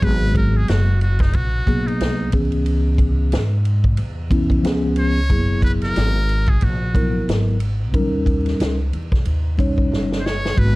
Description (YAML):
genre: hip hop, jazz-hop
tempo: 91 BPM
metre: 4/4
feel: swing 58% on 16ths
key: G# minor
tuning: A4 = 437 Hz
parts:
  - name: trumpet with metal mute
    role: melody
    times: 0.0-10.8 s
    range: D#4 to C#5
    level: -26 LUFS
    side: equal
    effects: plate reverb
  - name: mellow tine electric piano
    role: accompaniment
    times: 0.0-10.8 s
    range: D#3 to C#5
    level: -22 LUFS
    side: left 1 dB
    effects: medium stereo tremolo, plate reverb
  - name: upright bass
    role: bass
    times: 0.0-10.8 s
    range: F#1 to G#2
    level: -20 LUFS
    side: equal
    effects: none
  - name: vintage drum kit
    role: drums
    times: 0.0-10.8 s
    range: hi-hat, kick drum, ride cymbal, snare drum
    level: -21 LUFS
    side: equal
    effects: none
room: light reverb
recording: dark, warm production, vinyl crackle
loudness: -16 LUFS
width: side -21 dB against mid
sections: 0.0-10.8 A section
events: drum fill 9.9-10.6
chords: 0.0 G#m9; 2.3 C#m7; 4.6 C#7; 5.3 F#9sus4; 7.9 D#7